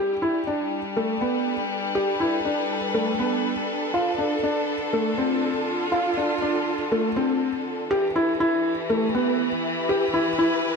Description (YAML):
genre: piano and strings electronica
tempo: 121 BPM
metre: 4/4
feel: straight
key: unclear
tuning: A4 = 442 Hz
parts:
  - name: clear studio string section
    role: sustained chords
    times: 0.0-10.8 s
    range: D3 to B4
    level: -26 LUFS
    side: left 1 dB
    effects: low-pass filter
  - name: felt-muted upright piano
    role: riff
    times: 0.0-10.7 s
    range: A3 to G4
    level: -23 LUFS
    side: equal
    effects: ping-pong delay
room: wet echo chamber reverb, RT60 1.6 s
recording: dark, warm production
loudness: -22 LUFS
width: side -4 dB against mid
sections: 0.0-10.8 A section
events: build-up 0.0-10.8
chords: 0.0 Gadd9; 3.9 Dm; 7.9 Em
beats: 0.47 0.97 1.46 | 1.96 2.46 2.95 3.45 | 3.94 4.44 4.93 5.43 | 5.93 6.42 6.92 7.41 | 7.91 8.41 8.90 9.40 | 9.89 10.39